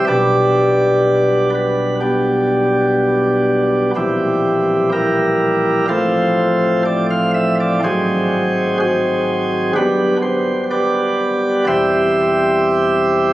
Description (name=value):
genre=classical, chorale-style piece for pipe organ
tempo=62 BPM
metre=4/4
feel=rubato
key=C major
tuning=A4 = 440 Hz
part: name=chamber organ, sparkling flutes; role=solo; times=0.0-13.3 s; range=E1 to F5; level=-14 LUFS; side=equal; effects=none
room=wet cathedral reverb, RT60 5.1 s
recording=recorded on a phone in the room, club reverb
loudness=-14 LUFS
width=side -16 dB against mid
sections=0.0-13.3 A section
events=none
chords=0.1 G/B; 4.0 C7/Bb; 5.9 F/A; 7.8 Ab7; 9.8 G; 11.7 C/E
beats=| 0.08 1.06 2.02 2.98 | 3.95 4.92 5.88 6.85 | 7.83 8.80 9.76 10.71 | 11.68 12.65